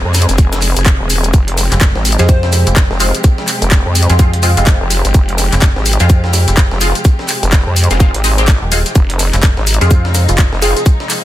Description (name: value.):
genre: bass house.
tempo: 126 BPM.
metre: 4/4.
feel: swing 60% on 16ths.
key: F minor.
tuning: A4 = 442 Hz.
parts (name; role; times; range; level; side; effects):
dark studio string section; sustained chords; 0.0-11.2 s; C3 to Ab4; -22 LUFS; equal; sidechain pumping.
vowel-sweep wobble bass; bass; 0.0-10.7 s; Eb1 to F2; -14 LUFS; equal; chorus, tube saturation, sidechain pumping.
breakbeat sampler-style drum kit; drums; 0.1-11.2 s; hi-hat, shaker, snare drum; -24 LUFS; left 1 dB; high-pass filter on perc, high-pass filter on hats, high-pass filter on snare, high-pass filter on room.
house drum kit; drums; 0.1-11.2 s; handclaps, hi-hat; -18 LUFS; left 2 dB; overdrive.
maracas; percussion; 0.1-11.2 s; none; -24 LUFS; right 4 dB; none.
electronic kick drum; drums; 0.4-11.0 s; none; -10 LUFS; equal; none.
metallic FM bass; bass; 1.7-10.5 s; Eb1 to F2; -13 LUFS; equal; overdrive, sidechain pumping.
plucky unison lead; melody; 2.2-2.7, 9.8-10.8 s; F4 to C5; -21 LUFS; right 1 dB; digital delay.
band-passed chord stab; stabs; 2.2-10.7 s; Ab3 to G4; -20 LUFS; left 1 dB; phaser, ensemble chorus, sidechain pumping, digital delay.
room: digital ambience.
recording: dense, heavily limited modern master.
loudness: -9 LUFS.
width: side -14 dB against mid.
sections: 0.0-11.2 A section.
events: none.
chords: 0.0 Fm.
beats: 0.38 0.86 | 1.33 1.81 2.29 2.76 | 3.24 3.72 4.19 4.67 | 5.14 5.62 6.10 6.57 | 7.05 7.53 8.00 8.48 | 8.95 9.43 9.91 10.38 | 10.86.